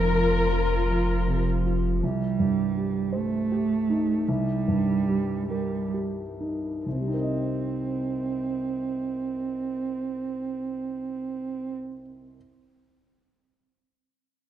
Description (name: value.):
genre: neoclassical piano and strings.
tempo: 43-55 BPM (dotted quarters).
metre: 6/8.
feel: rubato.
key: C dorian.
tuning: A4 = 439 Hz.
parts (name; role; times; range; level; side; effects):
muted chamber violin section; melody; 0.0-1.4 s; Bb4; -26 LUFS; left 3 dB; none.
muted cello; second line; 0.0-11.7 s; F3 to C4; -28 LUFS; right 5 dB; none.
muted viola; accompaniment; 0.0-1.8 s; F4; -33 LUFS; right 5 dB; none.
warm concert grand piano; accompaniment; 0.0-12.4 s; C2 to Eb5; -29 LUFS; left 2 dB; none.
warm sub bass; bass; 0.0-2.0 s; F1; -26 LUFS; equal; none.
room: moderate plate reverb, RT60 2.5 s.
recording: rough home demo mix.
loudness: -24 LUFS.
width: side -11 dB against mid.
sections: 0.0-2.0 A section; 2.0-6.8 B section; 6.8-12.3 C section.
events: slowing down 0.9-6.8.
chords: 0.0 Fsus4; 2.0 Cm7.